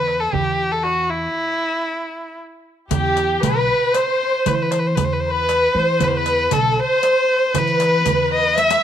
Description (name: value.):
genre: Arabic maqam ensemble.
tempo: 116 BPM.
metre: 3/4.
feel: straight.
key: E minor.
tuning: A4 = 440 Hz.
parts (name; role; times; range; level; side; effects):
dark violin; melody; 0.0-8.8 s; E4 to E5; -18 LUFS; equal; none.
upright bass; bass; 0.0-8.7 s; B1 to E3; -24 LUFS; left 1 dB; none.
darbuka; percussion; 0.1-8.8 s; none; -26 LUFS; right 10 dB; none.
warm symphonic violin section; second line; 2.9-8.8 s; G4 to E5; -21 LUFS; left 1 dB; none.
riq; percussion; 2.9-8.8 s; none; -28 LUFS; left 15 dB; none.
room: light reverb, studio reverb.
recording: 1960s-style stereo with parts hard left and right.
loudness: -16 LUFS.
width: side -9 dB against mid.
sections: 0.0-2.9 A section; 2.9-8.8 B section.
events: stop 1.4-2.9; drum fill 8.6.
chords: none.